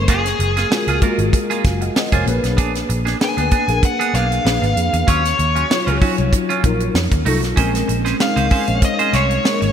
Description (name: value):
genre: polished 1980s jazz-funk pop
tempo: 96 BPM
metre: 4/4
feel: swing 54% on 16ths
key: Bb minor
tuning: A4 = 440 Hz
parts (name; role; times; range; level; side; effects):
- nasal lead guitar with a parked wah; melody; 0.0-9.7 s; Ab4 to Ab5; -21 LUFS; left 2 dB; overdrive, digital delay
- mellow tine electric piano; accompaniment; 0.0-9.7 s; Gb3 to Ab5; -22 LUFS; left 2 dB; medium stereo tremolo, ensemble chorus
- vintage muted fingered electric bass; bass; 0.0-9.7 s; F1 to F2; -20 LUFS; equal; none
- clean electric guitar; riff; 0.1-9.6 s; Gb3 to C5; -23 LUFS; right 7 dB; lush chorus
- tight funk drum kit; drums; 0.1-9.7 s; hi-hat, kick drum, snare drum; -20 LUFS; right 1 dB; none
room: moderate lush hall reverb, RT60 3.1 s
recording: bright 1980s-style digital production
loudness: -15 LUFS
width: side -8 dB against mid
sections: 0.0-9.7 A section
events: none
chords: 0.1 Gbmaj9; 2.3 Bb7b9; 5.1 Ebm9; 7.0 F7b9; 7.6 Bbm9